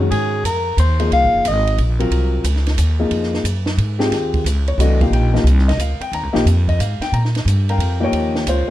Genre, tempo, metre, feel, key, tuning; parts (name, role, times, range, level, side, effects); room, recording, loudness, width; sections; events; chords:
modal jazz; 180 BPM; 3/4; swing 65% on 8ths; Eb mixolydian from 4.1 s; A4 = 440 Hz
warm grand piano; accompaniment; 0.0-8.7 s; Eb3 to Bb5; -20 LUFS; left 2 dB
upright bass; bass; 0.0-8.7 s; F1 to Bb2; -17 LUFS; equal
mellow soprano saxophone; melody; 0.1-1.8 s; Ab4 to F5; -18 LUFS; left 1 dB; plate reverb
compact cocktail drum kit; drums; 0.1-8.6 s; hi-hat, kick drum, ride cymbal, snare drum; -26 LUFS; right 2 dB
light reverb; dark, warm production; -15 LUFS; side -14 dB against mid
0.0-4.1 A section; 4.1-8.7 B section
0.1 Fm7; 4.1 Eb13